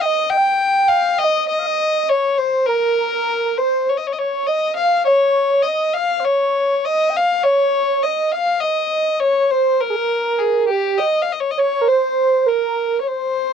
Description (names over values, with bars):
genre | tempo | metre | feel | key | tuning
arabic | 101 BPM | 4/4 | straight | C maqam kurd | A4 = 440 Hz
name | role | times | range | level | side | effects
dark violin | melody | 0.0-13.5 s | G4 to G5 | -18 LUFS | left 6 dB | cassette tape
warm velvety synth lead | second line | 0.0-13.5 s | G4 to G5 | -19 LUFS | right 8 dB | chorus
room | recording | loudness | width
moderate booth ambience, RT60 0.2 s | home recording on cassette | -15 LUFS | side -7 dB against mid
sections
0.0-13.5 A section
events
none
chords
none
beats
| 0.04 0.64 1.23 1.82 | 2.42 3.01 3.60 4.19 | 4.79 5.38 5.97 6.56 | 7.16 7.75 8.34 8.93 | 9.53 10.12 10.71 11.30 | 11.89 12.49 13.08